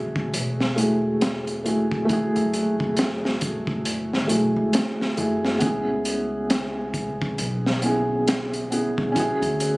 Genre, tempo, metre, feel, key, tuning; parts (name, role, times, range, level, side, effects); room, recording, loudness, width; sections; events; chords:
trip hop; 68 BPM; 4/4; swing 60% on 16ths; F# minor; A4 = 440 Hz
felt-muted upright piano; accompaniment; 0.0-9.8 s; A3 to G#4; -23 LUFS; equal; tremolo, tape echo
upright bass; bass; 0.0-9.8 s; E1 to D2; -32 LUFS; equal; tube saturation
crunchy breakbeat drum kit; drums; 0.2-9.8 s; hi-hat, kick drum, snare drum; -26 LUFS; equal
light reverb, small room ambience; recorded on a phone in the room, studio reverb, vinyl crackle; -21 LUFS; side -24 dB against mid
0.0-9.8 A section
0.0 F#m9; 5.6 C#m7; 9.2 Dmaj9#11